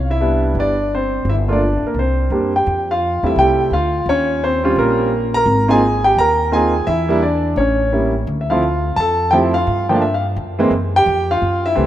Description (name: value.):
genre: jazz piano trio.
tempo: 171 BPM.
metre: 4/4.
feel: swing 63% on 8ths.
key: unclear.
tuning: A4 = 440 Hz.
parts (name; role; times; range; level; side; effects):
upright bass; bass; 0.0-11.9 s; G1 to G2; -20 LUFS; equal; none.
warm concert grand piano; melody; 0.1-11.9 s; E3 to Bb5; -15 LUFS; equal; none.
room: moderate lush hall reverb, RT60 2.6 s.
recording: rough home demo mix.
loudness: -14 LUFS.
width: side -12 dB against mid.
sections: 0.0-2.7 A section; 2.7-11.9 B section.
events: none.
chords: 0.0 Cmaj9; 1.3 Gm; 2.0 Csus2; 2.7 Fmaj9; 4.1 Eb13; 5.5 Ab69; 6.9 E7(no3); 7.6 A7b9; 8.3 Dm9; 9.7 G7(no3); 10.4 N.C.; 11.1 Fmaj7sus2.